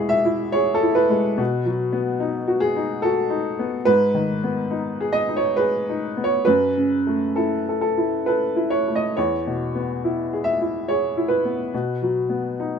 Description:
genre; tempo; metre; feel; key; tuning
neoclassical minimalist piano; 65-74 BPM; 3/4; rubato; E major; A4 = 440 Hz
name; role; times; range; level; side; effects
clear upright piano; solo; 0.0-12.8 s; E2 to E5; -19 LUFS; equal; none
room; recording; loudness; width
moderate studio reverb, RT60 0.8 s; minimal, uncompressed stereo recording; -19 LUFS; side -6 dB against mid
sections
0.0-12.8 A section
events
none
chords
0.0 E6; 1.4 B; 3.9 G#m; 6.4 F#m7; 9.2 E6; 11.7 B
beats
0.56 | 1.40 2.22 3.04 | 3.87 4.71 5.57 | 6.45 7.35 8.25 | 9.16 10.03 10.87 | 11.72 12.59

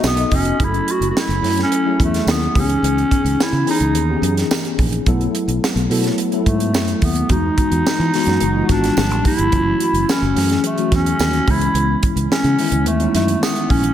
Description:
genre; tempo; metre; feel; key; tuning
polished 1980s jazz-funk pop; 108 BPM; 4/4; straight; unclear; A4 = 440 Hz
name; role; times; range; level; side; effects
growling clarinet; melody; 0.0-13.9 s; A3 to F#4; -19 LUFS; equal; none
mellow tine electric piano; accompaniment; 0.0-13.9 s; D#3 to D#5; -20 LUFS; left 2 dB; medium stereo tremolo, ensemble chorus
fingered electric bass; bass; 0.0-13.9 s; F1 to E3; -20 LUFS; equal; none
tight funk drum kit; drums; 0.0-13.9 s; hi-hat, kick drum, snare drum; -20 LUFS; right 1 dB; none
tambourine; percussion; 0.0-13.6 s; none; -32 LUFS; right 8 dB; none
room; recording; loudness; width
moderate lush hall reverb, RT60 1.8 s; big arena sound; -15 LUFS; side -10 dB against mid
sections
0.6-13.9 A section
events
none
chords
0.0 B7; 0.6 F#m7; 2.6 C#m9; 5.1 B7sus4; 7.3 Emaj9; 9.0 Gm7; 9.5 F#m7; 11.5 C#m9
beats
0.04 | 0.60 1.16 1.72 2.27 | 2.83 3.39 3.95 4.51 | 5.07 5.63 6.18 6.74 | 7.30 7.86 8.41 8.97 | 9.53 10.08 10.64 11.20 | 11.75 12.31 12.87 13.42

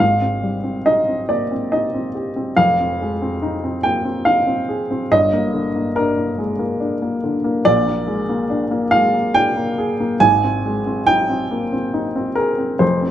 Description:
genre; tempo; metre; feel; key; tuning
neoclassical minimalist piano; 70 BPM; 3/4; rubato; unclear; A4 = 442 Hz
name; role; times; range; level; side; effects
dark upright piano; solo; 0.0-13.1 s; F1 to Ab5; -16 LUFS; equal; none
room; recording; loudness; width
moderate studio ambience, RT60 0.5 s; band playing live in one room; -16 LUFS; side -11 dB against mid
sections
0.0-13.1 A section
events
none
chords
0.0 Abmaj7; 2.6 Fm7; 5.1 Ebmaj7/G; 7.7 Bb7; 10.2 Abmaj7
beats
| 0.01 0.88 1.73 | 2.58 3.43 4.27 | 5.11 5.96 6.81 | 7.67 8.51 9.36 | 10.22 11.08 11.94 | 12.81

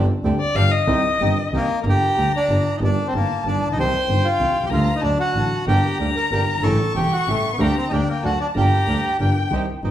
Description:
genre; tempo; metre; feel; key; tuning
tango; 188 BPM; 3/4; rubato; G minor; A4 = 437 Hz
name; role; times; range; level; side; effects
dark concert grand piano; accompaniment; 0.0-9.9 s; E1 to G4; -23 LUFS; equal; none
bandoneon; stabs; 0.0-1.7, 5.7-9.9 s; A3 to G4; -31 LUFS; right 2 dB; none
clear double bass; bass; 0.0-9.9 s; E1 to D2; -23 LUFS; right 1 dB; none
warm violin; second line; 0.4-9.5 s; D5 to C#6; -25 LUFS; left 5 dB; none
bandoneon; melody; 1.6-9.2 s; A3 to C5; -22 LUFS; right 1 dB; tape echo
room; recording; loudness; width
wet large studio reverb, RT60 0.8 s; heard from further back in the room; -17 LUFS; side -11 dB against mid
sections
0.0-1.9 A section; 1.9-9.5 B section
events
violin solo 0.0-1.9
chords
0.0 Gsus4; 0.6 G; 0.9 Cm; 1.9 Gm; 2.8 Eb/G; 3.8 Cm; 4.7 Gm/D; 5.0 D; 5.7 Gm; 6.6 A7; 7.6 Gm/D; 8.2 D; 8.6 Gm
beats
0.25 0.57 | 0.89 1.21 1.53 | 1.85 2.18 2.50 | 2.82 3.13 3.45 | 3.77 4.09 4.40 | 4.72 5.04 5.36 | 5.69 6.01 6.33 | 6.65 6.96 7.28 | 7.60 7.92 8.23 | 8.55 8.88 9.20 | 9.52 9.85

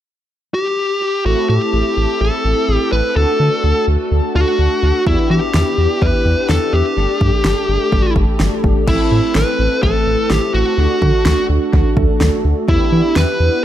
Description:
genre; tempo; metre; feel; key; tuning
synth-pop; 126 BPM; 4/4; straight; unclear; A4 = 441 Hz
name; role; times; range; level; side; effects
fuzz lead guitar; melody; 0.5-13.6 s; E4 to B4; -18 LUFS; equal; distortion, tape echo
mellow synth brass; accompaniment; 1.3-13.6 s; A3 to A4; -20 LUFS; equal; chorus, tape echo
round analog bass; bass; 1.3-13.5 s; G1 to E3; -16 LUFS; equal; none
deep house drum kit; drums; 5.1-13.3 s; crash cymbal, kick drum, snare drum; -18 LUFS; equal; overdrive, tape echo
room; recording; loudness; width
light reverb, digital ambience; echo-heavy mix; -13 LUFS; side -12 dB against mid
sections
0.0-1.3 A section; 1.3-8.9 B section; 8.9-13.6 C section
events
none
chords
0.0 N.C.; 1.3 Am; 3.2 D; 5.1 Em7; 7.0 Gsus2; 8.9 Am; 10.8 D; 12.7 Em7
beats
0.30 0.78 | 1.26 1.73 2.21 2.69 | 3.16 3.64 4.11 4.59 | 5.07 5.54 6.02 6.50 | 6.97 7.45 7.92 8.40 | 8.88 9.35 9.83 10.30 | 10.78 11.26 11.73 12.21 | 12.69 13.16 13.64

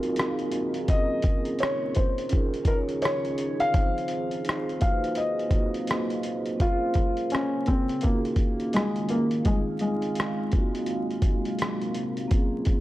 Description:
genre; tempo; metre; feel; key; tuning
lo-fi hip hop; 84 BPM; 4/4; swing 62% on 16ths; Bb minor; A4 = 440 Hz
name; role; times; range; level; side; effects
felt-muted upright piano; melody; 0.0-11.9 s; Ab3 to F5; -28 LUFS; left 1 dB; analog delay
vibraphone with soft mallets; accompaniment; 0.0-12.8 s; Ab3 to Eb5; -30 LUFS; right 1 dB; cassette tape
deep dark ambient pad; sustained chords; 0.0-12.8 s; C3 to F5; -35 LUFS; equal; chorus, built-in reverb
dusty soul sampler-style drum kit; drums; 0.0-12.8 s; hi-hat, kick drum, rim click; -26 LUFS; equal; none
room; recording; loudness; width
digital ambience; dry, gritty hardware recording, transformer saturation, vinyl crackle; -24 LUFS; side -16 dB against mid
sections
0.0-6.6 A section; 6.6-12.8 B section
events
none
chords
0.0 Ab13; 0.9 Bbm9; 2.3 Eb9sus4; 3.7 Fm7; 4.8 Ab13; 6.6 Bbm9; 8.0 Eb9sus4; 9.5 Fm7; 10.5 Ab13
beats
0.17 | 0.89 1.60 2.32 3.03 | 3.75 4.46 5.17 5.89 | 6.60 7.32 8.03 8.75 | 9.46 10.17 10.89 11.60 | 12.32

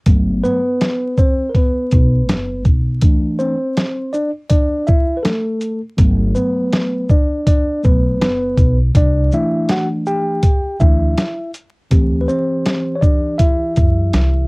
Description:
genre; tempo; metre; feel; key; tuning
hip hop, jazz-hop; 81 BPM; 4/4; swing 62% on 16ths; unclear; A4 = 445 Hz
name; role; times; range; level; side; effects
mellow tine electric piano; accompaniment; 0.1-14.5 s; E3 to G5; -18 LUFS; equal; medium stereo tremolo, cassette tape
upright bass; bass; 0.1-14.5 s; F#1 to F#2; -17 LUFS; equal; none
boom bap sampler-style drum kit; drums; 0.1-14.4 s; hi-hat, kick drum, shaker, snare drum; -14 LUFS; equal; cassette tape
room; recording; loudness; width
little or no reverb; home recording on cassette, vinyl crackle; -13 LUFS; side -30 dB against mid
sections
0.0-14.5 A section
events
tine electric piano solo 0.0-14.5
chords
0.1 Gmaj9 (rootless); 3.0 C69; 6.0 Gmaj9 (rootless); 9.0 C69 (rootless); 11.9 D9sus4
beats
| 0.06 0.80 1.54 2.28 | 3.02 3.77 4.51 5.25 | 5.99 6.73 7.47 8.21 | 8.95 9.69 10.43 11.17 | 11.91 12.65 13.40 14.14

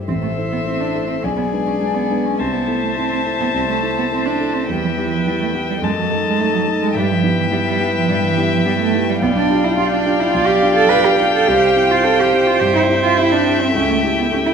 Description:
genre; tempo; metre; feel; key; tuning
quick classical-period movement for piano quintet; 105 BPM; 4/4; straight; A minor, C major from 9.2 s; A4 = 440 Hz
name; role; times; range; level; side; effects
warm concert grand piano; accompaniment; 0.0-14.5 s; A1 to C5; -21 LUFS; left 1 dB; none
dark violin; melody; 0.1-14.5 s; E5 to A5; -23 LUFS; left 6 dB; none
warm cello; second line; 0.1-14.5 s; E3 to B4; -18 LUFS; right 5 dB; none
warm violin; second line; 0.1-14.5 s; C5 to F5; -23 LUFS; left 1 dB; none
dark viola; accompaniment; 0.1-14.5 s; G#4 to D5; -24 LUFS; equal; none
room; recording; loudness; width
wet recital hall reverb, RT60 1.5 s; minimal, uncompressed stereo recording; -14 LUFS; side -6 dB against mid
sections
0.1-14.5 A section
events
none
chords
0.1 Am; 1.2 G#dim/B; 2.4 Am/C; 4.7 Em; 5.8 D#dim/F#; 7.0 Em/G; 9.2 G7/B; 11.5 C; 13.8 A7/C#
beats
| 0.07 0.66 1.23 1.81 | 2.38 2.96 3.53 4.11 | 4.68 5.25 5.82 6.39 | 6.96 7.52 8.09 8.65 | 9.21 9.78 10.35 10.91 | 11.48 12.05 12.61 13.18 | 13.75 14.32

